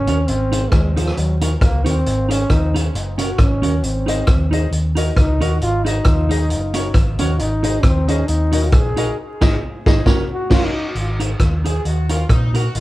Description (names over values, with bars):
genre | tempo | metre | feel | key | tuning
ska | 135 BPM | 4/4 | swing 55% on 8ths | Ab mixolydian | A4 = 442 Hz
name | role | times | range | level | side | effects
breathy trombone | melody | 0.0-10.9 s | F3 to Ab4 | -23 LUFS | equal | dub echo
hollow-body short-scale fingered electric bass | bass | 0.0-12.8 s | Gb1 to Bb2 | -19 LUFS | equal | none
semi-hollow electric guitar | accompaniment | 0.1-12.7 s | Db4 to C5 | -26 LUFS | right 2 dB | spring reverb
vintage drum kit | drums | 0.1-12.8 s | crash cymbal, hi-hat, kick drum, rim click, snare drum | -18 LUFS | equal | none
warm upright piano | stabs | 4.1-10.7 s | Db4 to Eb5 | -26 LUFS | left 2 dB | none
warm horn section | melody | 11.7-12.8 s | Eb4 to Ab4 | -27 LUFS | equal | none
room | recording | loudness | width
moderate small room ambience, RT60 0.5 s | band playing live in one room, vinyl crackle | -15 LUFS | side -17 dB against mid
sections
0.0-11.0 A section; 11.0-12.8 B section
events
trombone solo 0.0-11.0; band accent 9.2-11.0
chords
0.3 Ab; 1.2 Ebm; 2.1 Ab; 2.9 Gb; 3.8 Ab; 4.7 Ebm; 5.6 Ab; 6.5 Gb; 7.4 Ab; 8.3 Ebm; 9.2 Ab; 10.1 Gb; 11.0 Ab; 11.8 Ebm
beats
| 0.28 0.72 1.16 1.61 | 2.05 2.50 2.94 3.39 | 3.83 4.28 4.72 5.17 | 5.61 6.06 6.50 6.95 | 7.39 7.84 8.28 8.73 | 9.17 9.62 10.06 10.51 | 10.96 11.40 11.85 12.30 | 12.74